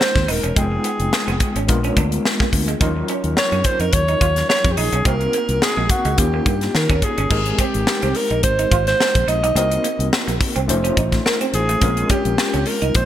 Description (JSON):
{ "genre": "polished 1980s jazz-funk pop", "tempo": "107 BPM", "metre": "4/4", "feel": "swing 54% on 16ths", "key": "unclear", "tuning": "A4 = 443 Hz", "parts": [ { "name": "breathy alto saxophone", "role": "melody", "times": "0.0-13.1 s", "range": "Gb4 to Eb5", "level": "-21 LUFS", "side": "right 1 dB", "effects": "none" }, { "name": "overdriven tine electric piano", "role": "accompaniment", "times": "0.0-13.1 s", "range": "F3 to G5", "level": "-25 LUFS", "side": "left 2 dB", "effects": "medium tremolo, analog chorus" }, { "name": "semi-hollow electric guitar", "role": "riff", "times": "0.0-13.0 s", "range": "Ab3 to F4", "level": "-27 LUFS", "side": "right 6 dB", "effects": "wide subtle chorus" }, { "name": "crisp fusion drum kit", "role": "drums", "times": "0.0-13.1 s", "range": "crash cymbal, hi-hat, kick drum, snare drum", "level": "-20 LUFS", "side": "left 1 dB", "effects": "gated reverb" }, { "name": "fingered electric bass", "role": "bass", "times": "0.2-13.1 s", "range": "Eb1 to Eb3", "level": "-22 LUFS", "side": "equal", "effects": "none" } ], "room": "moderate lush hall reverb, RT60 1.7 s", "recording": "bright 1980s-style digital production", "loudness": "-16 LUFS", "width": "side -11 dB against mid", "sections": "0.0-7.3 A section; 7.3-13.1 B section", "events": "none", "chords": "0.0 Dbmaj9; 0.6 Fm7b5; 1.7 Bb7b9; 2.8 Ebm9; 5.1 Cm7b5; 6.2 Eb7; 7.3 Abmaj7; 9.6 Cm7b5; 10.7 F7b13; 11.8 Bbm9", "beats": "0.00 | 0.56 1.13 1.69 2.25 | 2.81 3.37 3.93 4.50 | 5.06 5.62 6.18 6.74 | 7.31 7.87 8.43 9.00 | 9.56 10.12 10.69 11.25 | 11.82 12.38 12.95" }